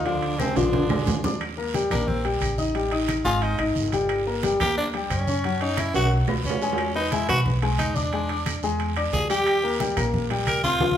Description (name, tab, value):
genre	Afro-Cuban jazz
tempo	179 BPM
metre	4/4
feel	straight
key	unclear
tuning	A4 = 444 Hz
part	growling tenor saxophone	melody	0.0-11.0 s	C4 to Bb4	-26 LUFS	right 1 dB	none
part	trombone with metal mute	second line	0.0-1.2 s	C3 to D3	-31 LUFS	right 6 dB	none
part	warm concert grand piano	accompaniment	0.0-10.9 s	F3 to Eb6	-25 LUFS	left 4 dB	none
part	upright bass	bass	0.0-11.0 s	G1 to Gb2	-28 LUFS	right 1 dB	none
part	congas	percussion	0.1-11.0 s	none	-31 LUFS	equal	none
part	guiro	percussion	0.1-11.0 s	none	-36 LUFS	right 6 dB	none
part	timbales	percussion	0.1-10.9 s	none	-32 LUFS	right 6 dB	none
part	claves	percussion	0.4-10.6 s	none	-40 LUFS	left 5 dB	none
room	wet large studio reverb, RT60 1.1 s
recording	band playing live in one room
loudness	-21 LUFS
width	side -10 dB against mid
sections	0.0-1.4 A section; 1.4-11.0 B section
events	drum fill 0.4-1.4, 5.9-6.8, 10.8; tenor saxophone solo 1.4-11.0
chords	0.1 Ddim; 0.7 Bb7; 1.4 Eb; 2.8 Fm9; 3.4 Ab5; 4.1 Gm; 5.4 Gb5; 6.1 B5; 6.8 E; 8.1 E7; 9.5 Ebmaj7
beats	| 0.06 0.40 0.73 1.07 | 1.41 1.74 2.08 2.41 | 2.75 3.09 3.42 3.76 | 4.10 4.43 4.77 5.11 | 5.44 5.78 6.11 6.45 | 6.79 7.12 7.46 7.79 | 8.13 8.46 8.80 9.13 | 9.47 9.80 10.14 10.47 | 10.81